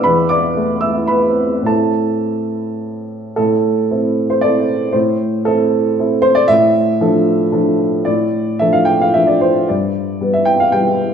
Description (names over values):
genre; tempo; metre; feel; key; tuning
neoclassical minimalist piano; 102-118 BPM; 3/4; rubato; A minor; A4 = 440 Hz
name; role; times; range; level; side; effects
dark upright piano; solo; 0.0-11.1 s; E2 to E6; -13 LUFS; equal; none
room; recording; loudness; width
wet recital hall reverb, RT60 1.5 s; none; -13 LUFS; side -7 dB against mid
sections
0.0-3.4 A section; 3.4-11.1 B section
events
none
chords
0.0 Esus4; 1.7 Am; 6.5 Dm/A; 9.7 G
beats
| 0.03 0.55 1.09 | 1.67 2.24 2.81 | 3.36 3.90 4.42 | 4.94 5.46 5.99 | 6.50 7.01 7.53 | 8.06 8.60 9.13 | 9.68 10.20 10.72